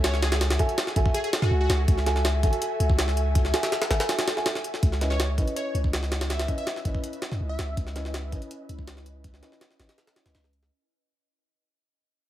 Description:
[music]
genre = drum and bass, jungle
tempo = 163 BPM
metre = 4/4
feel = straight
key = C# minor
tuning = A4 = 440 Hz
[part]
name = plucky unison lead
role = melody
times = 0.0-2.0, 5.1-7.8 s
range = F#4 to E5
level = -34 LUFS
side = equal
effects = dub echo
[part]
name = dark concert grand piano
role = stabs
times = 0.0-10.3 s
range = C#4 to G#5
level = -32 LUFS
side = right 2 dB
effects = vintage 12-bit sampler grit, low-pass filter, dub echo
[part]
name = long sustained 808-style bass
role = bass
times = 0.0-10.7 s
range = G#1 to F#2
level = -26 LUFS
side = equal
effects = none
[part]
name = jungle sampler-style drum kit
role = drums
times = 0.0-10.7 s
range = hi-hat, kick drum, snare drum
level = -26 LUFS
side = equal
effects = studio ambience
[sound]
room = light reverb, digital ambience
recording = none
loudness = -23 LUFS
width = side -13 dB against mid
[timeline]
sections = 0.0-4.8 A section; 4.8-10.7 B section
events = drop 0.0-4.8; break 4.1-4.8; fade-out 4.8-10.7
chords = 0.0 F#m9; 4.8 C#m9

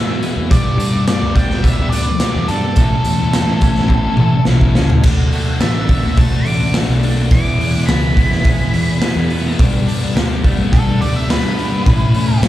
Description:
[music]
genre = quiet-loud alternative rock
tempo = 106 BPM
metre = 4/4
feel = straight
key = A major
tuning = A4 = 442 Hz
[part]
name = octave-fuzz lead guitar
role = melody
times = 0.0-12.4 s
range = A4 to D6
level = -24 LUFS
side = right 1 dB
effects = distortion, slapback echo, tape echo
[part]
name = twelve-string electric guitar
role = arpeggios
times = 0.0-12.5 s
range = A2 to B4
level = -24 LUFS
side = right 3 dB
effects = phaser, slapback echo
[part]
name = thick fuzz guitar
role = riff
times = 0.0-12.5 s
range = G2 to F#4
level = -21 LUFS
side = left 6 dB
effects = distortion, slapback echo
[part]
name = fuzz picked electric bass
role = bass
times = 0.0-12.5 s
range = A1 to A2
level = -19 LUFS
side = equal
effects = overdrive
[part]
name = raw garage drum kit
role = drums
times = 0.2-12.5 s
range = crash cymbal, hi-hat, kick drum, snare drum, toms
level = -15 LUFS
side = equal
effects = none
[sound]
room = studio reverb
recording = live gig heard through the venue's PA, club reverb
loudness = -12 LUFS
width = side -14 dB against mid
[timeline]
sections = 0.0-5.0 A section; 5.0-12.5 B section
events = drum fill 3.9-5.0; lead electric guitar solo 5.0-12.5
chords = 0.0 Eadd9; 0.5 Gadd9; 2.8 A; 5.0 D; 7.3 E; 9.6 Gadd9; 11.9 A

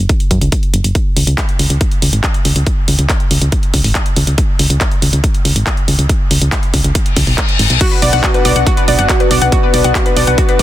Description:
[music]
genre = uplifting trance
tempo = 140 BPM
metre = 4/4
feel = straight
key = unclear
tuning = A4 = 442 Hz
[part]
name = solid FM bass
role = bass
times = 0.0-10.6 s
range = F#1 to F#2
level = -14 LUFS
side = equal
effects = tube saturation, sidechain pumping
[part]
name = big-room dance drum kit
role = drums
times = 0.1-10.6 s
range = crash cymbal, handclaps, hi-hat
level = -18 LUFS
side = equal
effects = none
[part]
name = electronic kick drum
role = drums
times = 0.1-10.6 s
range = none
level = -15 LUFS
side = equal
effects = none
[part]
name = reverse cymbal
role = sound effects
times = 7.1-7.8 s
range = none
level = -19 LUFS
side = left 6 dB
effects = none
[part]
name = lush unison pad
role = sustained chords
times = 7.8-10.6 s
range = B3 to F#4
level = -17 LUFS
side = left 1 dB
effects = chorus, sidechain pumping
[part]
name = analog pluck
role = arpeggios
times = 7.8-10.6 s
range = F#4 to F#5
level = -15 LUFS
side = left 1 dB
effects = chorus, sidechain pumping, ping-pong delay
[sound]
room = digital ambience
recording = dense, heavily limited modern master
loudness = -10 LUFS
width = side -13 dB against mid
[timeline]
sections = 0.0-10.6 A section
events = reverse cymbal 7.1-7.8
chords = 0.0 F#5; 1.0 C#5; 7.8 Bm

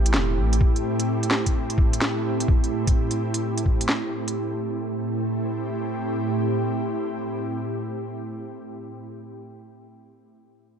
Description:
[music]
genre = future garage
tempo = 128 BPM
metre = 4/4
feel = swing 66% on 16ths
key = A minor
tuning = A4 = 442 Hz
[part]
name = ethereal airy pad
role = sustained chords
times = 0.0-8.8 s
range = A2 to G4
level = -26 LUFS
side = right 1 dB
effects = ensemble chorus, built-in reverb, sidechain pumping
[part]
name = soft dub sub bass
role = bass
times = 0.0-0.6 s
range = E1 to A1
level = -21 LUFS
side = equal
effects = sidechain pumping
[part]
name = organic electronic drum kit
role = drums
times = 0.1-4.3 s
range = hi-hat, snare drum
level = -26 LUFS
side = equal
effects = small room ambience
[part]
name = electronic kick drum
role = drums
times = 0.6-3.8 s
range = none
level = -20 LUFS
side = equal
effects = small room ambience
[sound]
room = moderate lush hall reverb, RT60 1.8 s, digital ambience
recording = none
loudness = -22 LUFS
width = side -8 dB against mid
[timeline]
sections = 0.0-4.4 A section; 4.4-8.1 B section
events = none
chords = 0.0 Am7

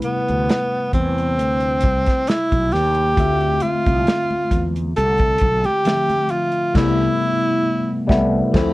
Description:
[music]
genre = R&B, neo-soul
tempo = 67 BPM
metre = 4/4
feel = swing 54% on 16ths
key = unclear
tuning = A4 = 441 Hz
[part]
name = breathy tenor saxophone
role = melody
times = 0.0-8.1 s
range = B3 to A4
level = -19 LUFS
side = equal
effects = none
[part]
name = mellow tine electric piano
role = accompaniment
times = 0.0-8.7 s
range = C3 to E5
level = -23 LUFS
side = left 2 dB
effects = phaser
[part]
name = warm soul drum kit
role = drums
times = 0.0-8.7 s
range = crash cymbal, hi-hat, kick drum, snare drum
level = -20 LUFS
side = equal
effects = none
[part]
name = fretless electric bass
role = bass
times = 0.3-8.7 s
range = B1 to E2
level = -22 LUFS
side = equal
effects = analog chorus
[part]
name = congas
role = percussion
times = 3.2-6.5 s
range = none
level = -33 LUFS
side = equal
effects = none
[sound]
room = light reverb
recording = worn, warbling old tape, cassette tape, warbly pitch drift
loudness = -16 LUFS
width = side -18 dB against mid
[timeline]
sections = 0.0-8.7 A section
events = band accent 6.8-8.7; tine electric piano fill 8.5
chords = 0.0 Am9; 3.2 Dm9; 6.8 Am9/C

